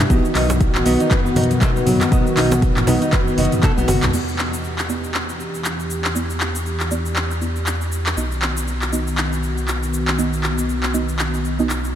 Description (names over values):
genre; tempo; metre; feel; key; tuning
afro house; 119 BPM; 4/4; swing 57% on 16ths; E minor; A4 = 442 Hz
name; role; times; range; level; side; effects
warm analog pad; sustained chords; 0.0-12.0 s; D#3 to G4; -24 LUFS; left 1 dB; chorus, sidechain pumping
deep mellow chord stab; stabs; 0.0-12.0 s; B3 to D#5; -26 LUFS; right 3 dB; chorus, sidechain pumping, diffuse ambient delay
smooth synth bass; bass; 0.0-12.0 s; F#1 to E2; -23 LUFS; equal; sidechain pumping
deep house drum kit; drums; 0.0-11.9 s; crash cymbal, handclaps, hi-hat, shaker, toms; -23 LUFS; equal; overdrive
congas; percussion; 0.0-4.1 s; none; -28 LUFS; left 3 dB; none
nylon-string guitar; arpeggios; 0.1-4.0 s; F#3 to B4; -25 LUFS; right 1 dB; sidechain pumping, diffuse ambient delay
electronic kick drum; drums; 0.1-3.7 s; none; -18 LUFS; equal; overdrive
djembe; percussion; 0.5-4.0 s; none; -30 LUFS; right 1 dB; none
room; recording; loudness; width
moderate huge ambient reverb, RT60 7.8 s; dreamy mix soaked in reverb; -17 LUFS; side -10 dB against mid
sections
0.0-4.1 A section; 4.1-12.0 B section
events
drum fill 3.6-4.1; filter sweep on synth stab 4.1-12.0; filter sweep on analog synth pad 4.1-12.0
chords
0.1 B; 4.1 Em7; 8.2 B